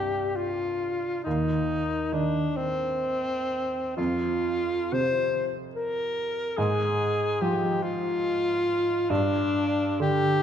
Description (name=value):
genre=classical, romantic duo for alto saxophone and grand piano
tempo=60-75 BPM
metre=3/4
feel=rubato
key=unclear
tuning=A4 = 440 Hz
part: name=clear alto saxophone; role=melody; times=0.0-10.4 s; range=C4 to C5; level=-26 LUFS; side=left 2 dB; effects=none
part: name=clear baby grand piano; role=accompaniment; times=0.0-10.4 s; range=C2 to F3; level=-30 LUFS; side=right 3 dB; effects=none
room=wet concert hall reverb, RT60 1.8 s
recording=minimal, uncompressed stereo recording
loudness=-24 LUFS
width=side -9 dB against mid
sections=0.0-10.4 A section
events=none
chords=0.0 C5; 1.3 N.C.; 4.0 F5; 6.6 Fm/Ab; 9.1 G5